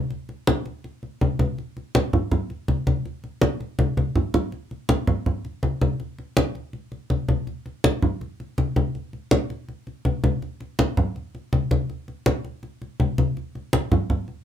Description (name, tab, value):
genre	jazz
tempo	163 BPM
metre	4/4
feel	straight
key	none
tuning	none
part	congas	percussion	0.1-14.4 s	none	-21 LUFS	equal	none
room	wet small room ambience, RT60 0.5 s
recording	minimal, uncompressed stereo recording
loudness	-22 LUFS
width	side -10 dB against mid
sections	0.0-4.5 A section; 4.5-14.4 B section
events	drum fill 3.8-4.5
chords	none